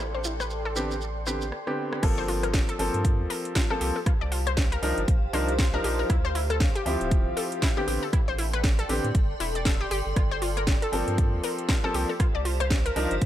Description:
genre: deep house.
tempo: 118 BPM.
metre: 4/4.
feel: swing 59% on 16ths.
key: G minor.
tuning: A4 = 440 Hz.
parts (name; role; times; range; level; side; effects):
analog pluck; arpeggios; 0.0-12.9 s; E4 to D5; -33 LUFS; left 4 dB; chorus, cassette tape, sidechain pumping, tape echo.
warm sub bass; bass; 0.0-13.3 s; D1 to A2; -30 LUFS; equal; sidechain pumping.
house drum kit; drums; 0.0-13.3 s; crash cymbal, hi-hat, rim click, snare drum; -32 LUFS; right 1 dB; none.
granular cloud pad; texture; 0.0-13.3 s; G4 to C6; -35 LUFS; equal; built-in reverb, sidechain pumping.
shekere; percussion; 0.2-1.5 s; none; -36 LUFS; right 4 dB; none.
felt-muted upright piano; stabs; 0.8-13.1 s; D3 to Bb4; -30 LUFS; equal; sidechain pumping, digital delay.
electronic kick drum; drums; 2.0-13.3 s; none; -24 LUFS; equal; none.
room: digital ambience.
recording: none.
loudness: -23 LUFS.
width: side -12 dB against mid.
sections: 0.0-2.0 A section; 2.0-13.3 B section.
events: drum fill 1.5-2.0; drop 2.0-13.3.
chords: 0.0 Am11; 2.0 Gm11; 4.1 Cm11; 6.1 Dm11; 7.9 Am11; 10.2 Gm11; 12.2 Cm11.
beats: | 0.00 0.50 1.01 1.52 | 2.03 2.54 3.05 3.56 | 4.06 4.57 5.08 5.59 | 6.10 6.61 7.11 7.62 | 8.13 8.64 9.15 9.66 | 10.16 10.67 11.18 11.69 | 12.20 12.71 13.22.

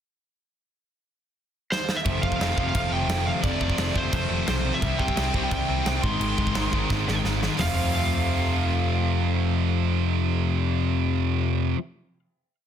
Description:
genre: punk rock.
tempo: 174 BPM.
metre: 4/4.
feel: straight.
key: unclear.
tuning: A4 = 440 Hz.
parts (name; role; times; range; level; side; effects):
lead guitar through a small cranked amp; melody; 1.7-11.1 s; C5 to C6; -30 LUFS; right 2 dB; overdrive, ping-pong delay.
big rock drum kit; drums; 1.7-7.7 s; crash cymbal, hi-hat, kick drum, snare drum, toms; -28 LUFS; equal; none.
crunchy overdriven guitar; riff; 2.0-11.8 s; F2 to E4; -31 LUFS; left 1 dB; none.
tight distorted guitar; riff; 2.0-11.8 s; F2 to C4; -30 LUFS; right 16 dB; distortion.
sludgy distorted guitar; riff; 2.1-11.8 s; F2 to C4; -30 LUFS; left 11 dB; overdrive.
overdriven picked electric bass; bass; 2.1-11.7 s; F1 to C2; -27 LUFS; equal; none.
room: little or no reverb.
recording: dense, heavily limited modern master.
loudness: -22 LUFS.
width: side -9 dB against mid.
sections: 0.7-2.1 pickup bar; 2.1-7.6 riff; 7.6-10.4 final chord.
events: drum fill 1.7-2.1, 6.9-7.6.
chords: 0.7 N.C.; 2.1 F; 4.8 C; 6.0 Ab; 7.6 F.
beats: | 0.68 1.03 1.37 1.72 | 2.06 2.41 2.75 3.10 | 3.44 3.79 4.13 4.48 | 4.82 5.17 5.51 5.86 | 6.21 6.55 6.90 7.24 | 7.59 7.94 8.28 8.63 | 8.98 9.32 9.67 10.02.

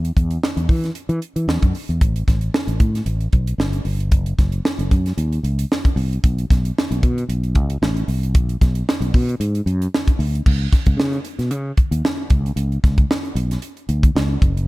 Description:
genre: polished 1980s jazz-funk pop.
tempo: 114 BPM.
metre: 4/4.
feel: swing 54% on 16ths.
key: unclear.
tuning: A4 = 439 Hz.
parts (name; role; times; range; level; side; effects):
fretless electric bass; bass; 0.0-14.7 s; F#1 to E3; -20 LUFS; equal; none.
tight funk drum kit; drums; 0.0-14.7 s; crash cymbal, hi-hat, kick drum, snare drum; -18 LUFS; equal; gated reverb.
room: little or no reverb.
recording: none.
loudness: -17 LUFS.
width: side -20 dB against mid.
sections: 0.0-10.5 A section; 10.5-14.7 B section.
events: none.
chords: none.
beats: 0.43 0.96 1.49 | 2.01 2.54 3.07 3.60 | 4.13 4.65 5.18 5.71 | 6.24 6.77 7.29 7.82 | 8.35 8.88 9.40 9.93 | 10.46 10.99 11.52 12.04 | 12.57 13.10 13.62 14.15.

